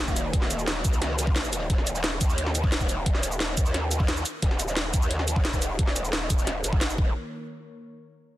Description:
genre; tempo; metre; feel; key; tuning
dark technical drum and bass; 176 BPM; 4/4; straight; Eb minor; A4 = 439 Hz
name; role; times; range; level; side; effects
sweeping resonant pad; sustained chords; 0.0-7.1 s; Eb3 to Db5; -41 LUFS; left 2 dB; chorus, sidechain pumping
growl bass; bass; 0.0-7.1 s; Eb1 to Eb2; -28 LUFS; equal; chorus, tube saturation, sidechain pumping
drum and bass drum kit; drums; 0.1-7.0 s; hi-hat, shaker, snare drum; -29 LUFS; equal; none
electronic kick drum; drums; 0.1-7.1 s; none; -25 LUFS; equal; overdrive
room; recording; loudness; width
little or no reverb; dense, heavily limited modern master; -23 LUFS; side -15 dB against mid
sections
0.0-7.2 A section; 7.2-8.4 B section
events
filter sweep on analog synth pad 0.0-7.2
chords
0.0 Eb5; 7.2 N.C.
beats
| 0.34 0.68 1.02 1.36 | 1.70 2.04 2.38 2.72 | 3.06 3.40 3.74 4.08 | 4.43 4.77 5.11 5.45 | 5.79 6.13 6.47 6.81

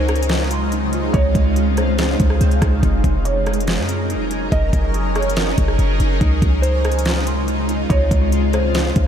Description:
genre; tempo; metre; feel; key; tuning
hip hop, atmospheric cloud-rap; 142 BPM; 4/4; half-time; unclear; A4 = 440 Hz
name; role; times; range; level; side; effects
felt-muted upright piano; melody; 0.0-9.1 s; C5 to Eb5; -26 LUFS; right 2 dB; ping-pong delay
shimmering ambient pad; sustained chords; 0.0-9.1 s; C3 to Bb4; -22 LUFS; equal; chorus, built-in reverb, phaser, sidechain pumping
mellow electric guitar; arpeggios; 0.0-9.1 s; Eb4 to C6; -29 LUFS; right 6 dB; ensemble chorus, ping-pong delay
clean 808-style bass; bass; 0.0-9.1 s; F1 to Gb2; -18 LUFS; equal; none
smooth R&B drum kit; drums; 0.1-9.1 s; hi-hat, kick drum, rim click, snare drum; -22 LUFS; equal; overdrive
room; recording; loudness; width
light reverb; none; -15 LUFS; side -8 dB against mid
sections
0.0-9.1 A section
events
none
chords
0.0 Dbmaj9; 2.8 Gb69; 6.2 Dbmaj9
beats
0.30 0.72 | 1.14 1.56 1.99 2.41 | 2.83 3.25 3.68 4.10 | 4.52 4.94 5.37 5.79 | 6.21 6.63 7.06 7.48 | 7.90 8.32 8.75

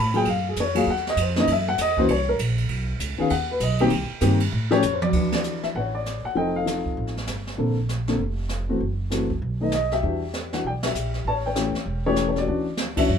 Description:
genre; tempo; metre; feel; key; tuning
jazz piano trio; 196 BPM; 4/4; swing 63% on 8ths; D major from 5.1 s; A4 = 444 Hz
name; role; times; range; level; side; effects
dark upright piano; melody; 0.0-13.2 s; D3 to Cb6; -23 LUFS; left 2 dB; none
upright bass; bass; 0.0-13.2 s; E1 to A2; -27 LUFS; right 1 dB; none
jazz brush drum kit; drums; 0.1-13.2 s; brushed snare drum, crash cymbal, hi-hat, kick drum, ride cymbal, snare drum, toms; -30 LUFS; right 3 dB; none
room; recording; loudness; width
moderate small room reverb, RT60 0.5 s; minimal, uncompressed stereo recording; -21 LUFS; side -7 dB against mid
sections
0.0-5.1 A section; 5.1-13.2 B section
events
upright piano solo 0.0-5.1; drum fill 4.8-5.1; band accent 5.3, 10.8, 12.9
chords
0.3 Gbmaj7(no3); 1.5 Gb7; 2.7 Badd9; 3.9 Cm7; 4.5 Aaug; 5.1 Dmaj9; 6.4 F7; 7.6 Bbmaj9; 8.8 F#m7b5; 9.4 B; 10.0 Em9; 11.3 A7; 12.5 Dmaj9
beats
| 0.26 0.56 0.86 1.17 | 1.47 1.78 2.08 2.39 | 2.69 3.00 3.30 3.60 | 3.91 4.21 4.52 4.82 | 5.13 5.43 5.74 6.05 | 6.35 6.66 6.96 7.27 | 7.58 7.88 8.19 8.50 | 8.80 9.11 9.41 9.72 | 10.03 10.33 10.64 10.95 | 11.25 11.56 11.86 12.17 | 12.48 12.78 13.09

